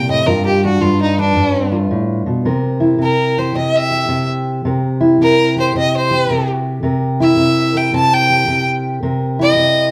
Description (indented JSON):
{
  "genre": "acoustic country blues, solo or duo",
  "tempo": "110 BPM",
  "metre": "4/4",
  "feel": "swing 65% on 8ths",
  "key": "C mixolydian",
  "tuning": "A4 = 440 Hz",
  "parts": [
    { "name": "clear fiddle", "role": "melody", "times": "0.0-9.9 s", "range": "D4 to A5", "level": "-18 LUFS", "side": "equal", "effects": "none" },
    { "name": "fingerpicked steel-string acoustic guitar", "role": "accompaniment", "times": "0.0-9.9 s", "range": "G2 to B4", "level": "-18 LUFS", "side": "equal", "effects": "none" }
  ],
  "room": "wet large studio reverb, RT60 1.0 s",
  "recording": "band playing live in one room",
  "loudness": "-15 LUFS",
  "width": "mono",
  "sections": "0.0-2.5 A section; 2.5-9.9 B section",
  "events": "fiddle solo 2.5-9.9",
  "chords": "0.3 G7; 2.5 C7"
}